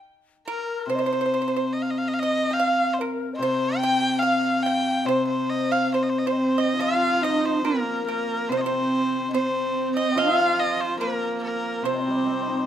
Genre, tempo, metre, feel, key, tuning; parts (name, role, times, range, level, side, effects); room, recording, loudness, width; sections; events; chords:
chinese traditional, Chinese chamber ensemble; 72 BPM; 2/4; rubato; C yu mode; A4 = 440 Hz
clear erhu; melody; 0.5-12.7 s; Bb4 to G5; -26 LUFS; equal
bright low xiao; second line; 0.5-12.7 s; Bb4 to G5; -29 LUFS; left 4 dB
pipa; second line; 0.5-12.7 s; Bb4 to G5; -28 LUFS; right 6 dB
hammered dulcimer; accompaniment; 0.9-12.7 s; C3 to Eb4; -26 LUFS; left 2 dB
clear horsehead fiddle; second line; 6.3-12.7 s; Bb3 to F4; -28 LUFS; right 6 dB
moderate recital hall reverb, RT60 1.4 s; close, detailed microphones; -21 LUFS; side -10 dB against mid
0.0-6.8 A section; 6.8-12.7 B section